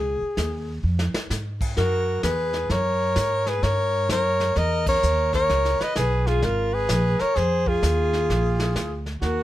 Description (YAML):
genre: jazz, small-group swing and bop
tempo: 129 BPM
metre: 4/4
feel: swing 65% on 8ths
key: Db mixolydian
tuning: A4 = 439 Hz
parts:
  - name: breathy alto saxophone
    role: melody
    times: 0.0-9.4 s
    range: Ab4 to Eb5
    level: -23 LUFS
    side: left 2 dB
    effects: none
  - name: upright bass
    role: bass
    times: 0.0-9.4 s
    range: Ab1 to Ab2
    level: -25 LUFS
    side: equal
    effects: none
  - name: vintage brush drum kit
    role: drums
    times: 0.4-9.4 s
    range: brushed snare drum, crash cymbal, hi-hat, kick drum, ride cymbal, snare drum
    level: -30 LUFS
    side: equal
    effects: none
  - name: clear trumpet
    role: second line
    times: 1.8-9.4 s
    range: F4 to Cb5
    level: -29 LUFS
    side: right 4 dB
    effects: none
room: little or no reverb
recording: close, detailed microphones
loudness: -20 LUFS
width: side -14 dB against mid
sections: 0.0-9.4 A section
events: drum fill 0.8-1.3; band accent 4.8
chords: 0.0 Dbadd9; 1.8 Gb9; 3.6 Gdim7; 5.5 Db5; 7.4 Fm7; 8.3 Bb7